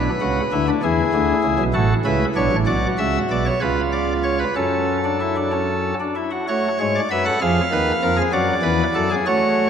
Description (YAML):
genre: classical, baroque-style 3-part fugue for pipe organ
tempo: 64 BPM (dotted quarters)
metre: 6/8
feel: straight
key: F# minor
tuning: A4 = 439 Hz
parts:
  - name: pipe organ, cornet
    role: solo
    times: 0.0-9.7 s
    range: A1 to F#5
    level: -17 LUFS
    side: equal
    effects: none
room: wet church reverb, RT60 3.5 s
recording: none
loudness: -17 LUFS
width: side -7 dB against mid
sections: 0.0-6.5 A section; 6.5-9.7 B section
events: none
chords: 0.0 Bm; 0.8 E; 1.8 A; 2.7 Bmadd9; 3.6 C#7; 4.6 F#m; 7.4 Fdim; 8.3 F#m